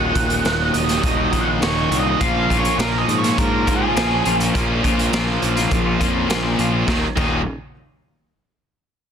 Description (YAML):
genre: quiet-loud alternative rock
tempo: 103 BPM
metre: 4/4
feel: straight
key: Eb minor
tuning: A4 = 438 Hz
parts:
  - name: octave-fuzz lead guitar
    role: melody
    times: 0.0-4.3 s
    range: Ab4 to Gb5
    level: -22 LUFS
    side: right 3 dB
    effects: distortion
  - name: twangy electric guitar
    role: arpeggios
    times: 0.0-7.4 s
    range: Eb2 to F4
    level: -26 LUFS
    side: left 5 dB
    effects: analog chorus
  - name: distorted electric guitar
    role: riff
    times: 0.0-7.4 s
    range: Eb2 to F4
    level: -24 LUFS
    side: left 10 dB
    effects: distortion
  - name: tight distorted guitar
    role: riff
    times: 0.0-7.4 s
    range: Eb2 to Bb3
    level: -24 LUFS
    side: right 13 dB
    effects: distortion
  - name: fuzz picked electric bass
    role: bass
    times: 0.0-7.4 s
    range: Eb1 to Ab2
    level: -24 LUFS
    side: equal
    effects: overdrive
  - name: raw garage drum kit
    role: drums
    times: 0.2-7.3 s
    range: crash cymbal, hi-hat, kick drum, snare drum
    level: -23 LUFS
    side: equal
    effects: none
room: studio reverb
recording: dense, heavily limited modern master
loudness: -16 LUFS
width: side -8 dB against mid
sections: 0.0-6.9 A section; 6.9-9.1 B section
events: lead electric guitar solo 0.0-6.9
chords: 0.0 Ebm; 2.2 Bbm; 6.9 Ebm